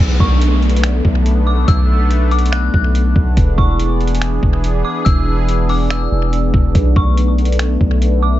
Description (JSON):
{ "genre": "hip hop, atmospheric cloud-rap", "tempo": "142 BPM", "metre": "4/4", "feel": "half-time", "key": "B dorian", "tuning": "A4 = 439 Hz", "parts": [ { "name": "sweeping resonant pad", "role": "sustained chords", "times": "0.0-8.4 s", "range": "E3 to G#4", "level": "-20 LUFS", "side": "equal", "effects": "chorus, sidechain pumping" }, { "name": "long sustained 808-style bass", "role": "bass", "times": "0.0-8.4 s", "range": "E1 to B1", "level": "-14 LUFS", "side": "equal", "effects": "none" }, { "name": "downlifter", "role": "sound effects", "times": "0.0-3.4 s", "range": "none", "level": "-27 LUFS", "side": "equal", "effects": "none" }, { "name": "dark detuned synth bell", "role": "melody", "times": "0.2-8.4 s", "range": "C#6 to F#6", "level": "-24 LUFS", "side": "left 1 dB", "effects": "chorus, phaser, tape echo" }, { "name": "trip hop sampler-style drum kit", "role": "drums", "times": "0.2-8.1 s", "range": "finger snaps, hi-hat, kick drum", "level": "-16 LUFS", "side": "equal", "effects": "vintage 12-bit sampler grit" } ], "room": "little or no reverb", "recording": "echo-heavy mix, nothing above 7.8 kHz", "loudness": "-12 LUFS", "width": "side -14 dB against mid", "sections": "0.0-8.4 A section", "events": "none", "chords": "0.0 Bm7; 3.4 E7; 6.8 Bm7" }